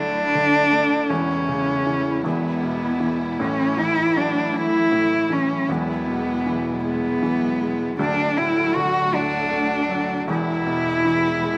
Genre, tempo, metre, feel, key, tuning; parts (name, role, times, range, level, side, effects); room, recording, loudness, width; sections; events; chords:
six-eight pop ballad; 52 BPM (dotted quarters); 6/8; straight; A major; A4 = 441 Hz
dark cello; melody; 0.0-11.6 s; B3 to F#4; -23 LUFS; equal; slapback echo
felt-muted upright piano; accompaniment; 0.0-11.6 s; D1 to A3; -29 LUFS; equal; slapback echo
warm studio string section; sustained chords; 0.0-11.6 s; E2 to F#4; -32 LUFS; equal
light reverb; recorded outdoors, with no room sound; -21 LUFS; mono
0.0-11.6 A section
0.0 Dadd9; 1.1 A/E; 2.3 E; 3.4 A5; 5.7 Eadd9; 8.0 D; 10.3 E